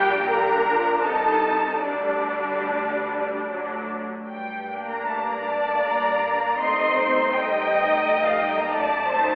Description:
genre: classical, slow romantic movement for string orchestra.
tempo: 71-87 BPM.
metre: 3/4.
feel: rubato.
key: G minor.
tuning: A4 = 440 Hz.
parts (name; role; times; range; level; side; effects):
rich symphonic violin section; melody; 0.0-9.3 s; D5 to C6; -24 LUFS; equal; none.
warm symphonic violin section; second line; 0.0-9.3 s; D4 to Eb5; -24 LUFS; equal; none.
rich symphonic viola section; accompaniment; 0.0-9.3 s; Eb3 to Eb4; -28 LUFS; equal; none.
rich symphonic cello section; bass; 0.0-9.3 s; Bb2 to C4; -34 LUFS; equal; none.
rich symphonic double bass section; bass; 0.0-9.3 s; Bb1 to G2; -37 LUFS; equal; none.
room: wet concert hall reverb, RT60 2.2 s.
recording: heard from further back in the room, telephone sound.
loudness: -20 LUFS.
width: side -31 dB against mid.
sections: 0.0-4.3 A section; 4.3-9.3 B section.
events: none.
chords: 0.0 Gm/Bb; 1.1 Adim/C; 1.8 G5/D; 3.5 D; 4.3 Gm; 6.6 Am7b5/G; 8.7 F#dim7.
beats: 0.30 1.05 | 1.85 2.69 3.50 | 4.29 5.08 5.85 | 6.60 7.34 8.05 | 8.74.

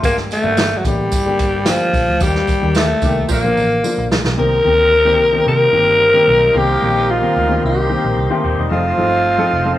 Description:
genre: uptempo 1960s-style soul.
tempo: 111 BPM.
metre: 4/4.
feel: straight.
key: unclear.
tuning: A4 = 441 Hz.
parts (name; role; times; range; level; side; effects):
breathy alto saxophone; melody; 0.0-9.8 s; F3 to Bb4; -15 LUFS; left 1 dB; none.
dark upright piano; accompaniment; 0.0-9.8 s; D3 to A4; -21 LUFS; left 2 dB; none.
electric guitar through a small old amp; riff; 0.0-0.2, 8.3-8.8 s; G3 to G4; -25 LUFS; left 4 dB; none.
vintage muted picked electric bass; bass; 0.0-9.7 s; Eb1 to C3; -21 LUFS; equal; none.
vintage drum kit; drums; 0.0-4.4 s; hi-hat, kick drum, snare drum; -19 LUFS; right 1 dB; none.
tambourine; percussion; 0.0-4.2 s; none; -33 LUFS; right 6 dB; none.
dark horn section; second line; 2.7-9.8 s; Eb3 to C5; -23 LUFS; right 2 dB; none.
percussive tonewheel organ; sustained chords; 4.4-9.8 s; C5 to C6; -28 LUFS; right 1 dB; fast rotary speaker, overdrive.
room: light reverb, small room ambience.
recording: none.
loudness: -12 LUFS.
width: side -13 dB against mid.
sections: 0.0-4.4 A section; 4.4-9.8 B section.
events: band accent 2.2-4.4; drum fill 3.3-4.4.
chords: 0.0 Gm; 2.2 Eb; 3.3 Bb; 4.4 Cm7; 8.7 F7.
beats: | 0.04 0.58 1.12 1.67 | 2.21 2.75 3.30 3.84 | 4.38 4.92 5.47 6.01 | 6.55 7.09 7.63 8.17 | 8.71 9.25.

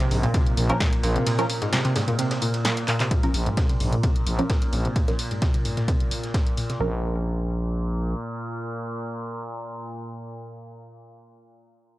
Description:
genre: driving peak-time techno.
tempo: 130 BPM.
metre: 4/4.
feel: straight.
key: Bb minor.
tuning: A4 = 437 Hz.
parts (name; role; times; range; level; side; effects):
warbly dusty pluck; riff; 0.0-7.0 s; Ab2 to C3; -26 LUFS; equal; chorus, sidechain pumping, tape echo.
overtone-sweeping drone; drone; 0.0-9.8 s; Bb2; -32 LUFS; equal; chorus, built-in reverb, sidechain pumping.
breakbeat sampler-style drum kit; drums; 0.0-6.8 s; hi-hat, ride cymbal, snare drum; -37 LUFS; right 1 dB; high-pass filter on cymbals, high-pass filter on snare, high-pass filter on hats.
punchy analog drum machine; drums; 0.0-6.8 s; handclaps, hi-hat, snare drum; -29 LUFS; equal; none.
growling FM bass; bass; 0.1-8.1 s; Bb1; -25 LUFS; equal; sidechain pumping.
electronic kick drum; drums; 0.3-6.4 s; none; -23 LUFS; equal; none.
filtered dub chord stab; stabs; 0.7-9.8 s; F3 to Bb4; -29 LUFS; right 1 dB; phaser, sidechain pumping, analog delay.
room: light reverb.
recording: dry, gritty hardware recording, cassette tape.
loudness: -22 LUFS.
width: side -17 dB against mid.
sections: 0.0-3.1 A section; 3.1-6.8 B section; 6.8-10.5 C section.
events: drop 0.0-3.1; drum fill 2.9; filter sweep on synth arpeggio sound 3.1-6.8; filter sweep on synth stab 3.1-6.8.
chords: 0.0 N.C.; 6.8 Bbm.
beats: 0.34 0.80 | 1.26 1.73 2.19 2.65 | 3.11 3.57 4.04 4.50 | 4.96 5.42 5.88 6.34 | 6.80 7.26 7.73 8.19 | 8.65 9.11 9.57.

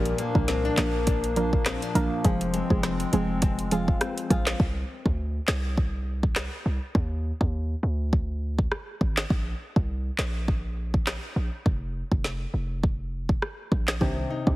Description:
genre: dancehall.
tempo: 102 BPM.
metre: 4/4.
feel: swing 56% on 16ths.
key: C minor.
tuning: A4 = 440 Hz.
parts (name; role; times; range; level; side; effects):
soft round pluck; accompaniment; 0.0-4.6, 14.0-14.6 s; Eb3 to Bb4; -29 LUFS; right 2 dB; chorus, sidechain pumping.
hollow soft pad; sustained chords; 0.0-4.6 s; F3 to D4; -34 LUFS; right 1 dB; chorus, sidechain pumping.
nylon-string guitar; arpeggios; 0.0-5.2, 14.0-14.6 s; Bb2 to F4; -30 LUFS; left 5 dB; none.
hard-hitting 808-style bass; bass; 0.0-14.6 s; F1 to Eb2; -28 LUFS; equal; none.
afro-pop drum kit; drums; 0.1-14.6 s; handclaps, hi-hat, kick drum, rim click, snare drum; -26 LUFS; equal; none.
room: light reverb.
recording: heavily compressed radio sound, multiband compression.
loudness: -24 LUFS.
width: side -17 dB against mid.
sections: 0.0-4.6 A section; 4.6-14.6 B section.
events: none.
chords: 0.0 Bb; 2.2 Fm; 4.6 Csus2; 7.0 N.C.; 9.3 Bbsus2; 11.7 Fsus4; 14.0 Cmadd9.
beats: 0.48 1.07 1.66 | 2.25 2.83 3.42 4.01 | 4.60 5.19 5.78 6.36 | 6.95 7.54 8.13 8.72 | 9.30 9.89 10.48 11.07 | 11.66 12.24 12.83 13.42 | 14.01.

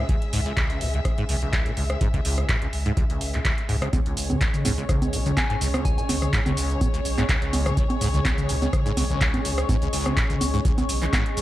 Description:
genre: acid house.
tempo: 125 BPM.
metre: 4/4.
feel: swing 54% on 16ths.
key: C# minor.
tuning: A4 = 440 Hz.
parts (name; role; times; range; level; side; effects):
dark studio string section; sustained chords; 0.0-11.4 s; C#3 to E5; -34 LUFS; left 2 dB; vintage 12-bit sampler grit, sidechain pumping.
acid bass, saw; riff; 0.0-11.4 s; C#2 to E3; -29 LUFS; equal; ensemble chorus, cassette tape, analog delay.
warm sub bass; bass; 0.0-11.4 s; B1 to C#2; -27 LUFS; equal; sidechain pumping.
booming analog drum machine; drums; 0.1-11.4 s; congas, handclaps, hi-hat, rim click, shaker, toms; -26 LUFS; right 1 dB; none.
electronic kick drum; drums; 0.1-11.2 s; none; -25 LUFS; equal; none.
warbly tape-like pad; texture; 4.1-11.4 s; C#4 to C#6; -32 LUFS; equal; chorus, built-in reverb, sidechain pumping.
soft synth bell; melody; 5.4-6.0 s; G#5; -34 LUFS; left 3 dB; chorus, phaser, analog delay.
room: little or no reverb.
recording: none.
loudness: -21 LUFS.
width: side -15 dB against mid.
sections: 0.0-3.9 A section; 3.9-11.4 B section.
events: drop 3.9-11.4.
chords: 0.0 C#5.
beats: | 0.09 0.57 1.05 1.53 | 2.01 2.49 2.97 3.45 | 3.93 4.41 4.89 5.37 | 5.85 6.33 6.81 7.29 | 7.77 8.25 8.73 9.21 | 9.69 10.17 10.65 11.13.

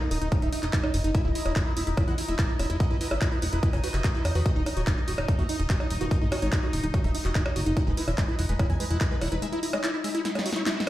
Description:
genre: psychedelic trance.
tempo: 145 BPM.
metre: 4/4.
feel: straight.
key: unclear.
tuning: A4 = 440 Hz.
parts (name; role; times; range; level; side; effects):
supersaw stab; melody; 0.0-10.9 s; Eb4 to Ab5; -36 LUFS; right 1 dB; phaser, sidechain pumping, ping-pong delay.
formant-sweep wobble bass; second line; 0.0-0.1, 6.0-6.2 s; Bb3; -44 LUFS; left 1 dB; ensemble chorus, sidechain pumping, high-pass filter, ping-pong delay.
bubbling stepped-filter texture; sustained chords; 0.0-10.9 s; Eb4 to Eb5; -36 LUFS; left 2 dB; chorus, built-in reverb, sidechain pumping.
screaming distorted acid line; riff; 0.0-10.9 s; Ab3 to Gb4; -33 LUFS; equal; distortion, chorus, auto-pan, sidechain pumping, tape echo.
plucky analog bass; bass; 0.1-9.4 s; Eb1 to E2; -28 LUFS; equal; tube saturation.
techno drum kit; drums; 0.1-10.9 s; handclaps, hi-hat, percussion blips, snare drum; -32 LUFS; equal; none.
electronic kick drum; drums; 0.3-9.1 s; none; -25 LUFS; equal; overdrive.
room: light reverb, digital ambience.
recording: played on a big sound system in a bare room, stone room reverb.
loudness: -24 LUFS.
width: side -14 dB against mid.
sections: 0.0-10.9 A section.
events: drum fill 10.2-10.9.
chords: 0.0 Eb5; 1.1 E5; 4.5 Ebm; 7.8 E5.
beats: 0.32 0.73 | 1.15 1.56 1.97 2.39 | 2.80 3.21 3.63 4.04 | 4.46 4.87 5.28 5.70 | 6.11 6.53 6.94 7.35 | 7.77 8.18 8.60 9.01 | 9.42 9.84 10.25 10.66.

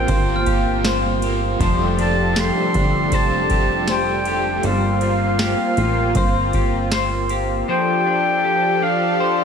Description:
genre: dream pop.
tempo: 79 BPM.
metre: 4/4.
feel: straight.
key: F major.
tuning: A4 = 440 Hz.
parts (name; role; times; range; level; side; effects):
clear oboe; melody; 0.0-9.4 s; F5 to C6; -23 LUFS; equal; ping-pong delay.
overdriven electric guitar; accompaniment; 0.0-4.7 s; F2 to F4; -27 LUFS; right 5 dB; tremolo, wide subtle chorus.
lush unison pad; sustained chords; 0.0-9.4 s; F3 to A4; -22 LUFS; right 1 dB; chorus.
clean electric guitar; arpeggios; 0.0-9.4 s; F3 to C5; -23 LUFS; left 4 dB; wide subtle chorus, ping-pong delay.
plucky analog bass; bass; 0.0-7.6 s; F1 to A1; -23 LUFS; equal; none.
booming analog drum machine; drums; 0.1-7.5 s; kick drum, ride cymbal, snare drum, tambourine; -23 LUFS; equal; none.
glockenspiel with soft plastic mallets; texture; 0.4-1.9 s; F6; -32 LUFS; right 2 dB; ping-pong delay.
room: light reverb.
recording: none.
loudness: -16 LUFS.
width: side -7 dB against mid.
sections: 0.0-9.4 A section.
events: none.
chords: 0.0 C7sus4/G; 1.6 F69; 4.6 C7sus4/G; 7.7 F69.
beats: 0.08 0.84 | 1.60 2.36 3.12 3.88 | 4.64 5.40 6.16 6.92 | 7.68 8.44 9.20.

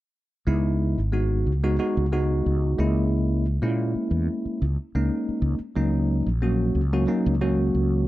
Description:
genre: jazz.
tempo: 91 BPM.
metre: 4/4.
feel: straight.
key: C# dorian.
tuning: A4 = 440 Hz.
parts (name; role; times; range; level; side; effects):
bell-like tine electric piano; accompaniment; 0.5-8.1 s; F#3 to F#4; -25 LUFS; equal; fast stereo tremolo, plate reverb.
mellow fretless electric bass; bass; 0.5-8.1 s; G#1 to A#2; -23 LUFS; equal; none.
room: moderate club reverb, RT60 0.5 s.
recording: none.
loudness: -21 LUFS.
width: side -16 dB against mid.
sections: 0.5-8.1 A section.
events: none.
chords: 0.5 C#m7; 2.8 C#m69; 5.8 D#m7.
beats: | 0.47 1.13 1.79 2.45 | 3.11 3.77 4.43 5.10 | 5.76 6.42 7.08 7.74.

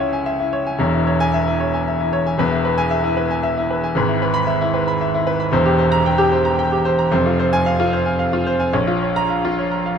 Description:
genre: classical, virtuoso piano study.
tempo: 113 BPM.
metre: 3/4.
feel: rubato.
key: F minor from 5.5 s.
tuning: A4 = 440 Hz.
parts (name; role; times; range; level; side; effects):
clear grand piano; solo; 0.0-10.0 s; E1 to B5; -16 LUFS; equal; none.
room: light reverb.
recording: dark, warm production.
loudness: -16 LUFS.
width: side -7 dB against mid.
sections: 0.0-10.0 A section.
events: none.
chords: 0.0 C#m; 0.8 C#m/E; 2.4 E; 4.0 E/G#; 5.5 C7/E; 7.1 Fm; 8.7 Bbm.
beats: 0.27 | 0.80 1.33 1.86 | 2.38 2.90 3.44 | 3.96 4.48 5.01 | 5.54 6.05 6.58 | 7.12 7.67 8.20 | 8.74 9.30 9.86.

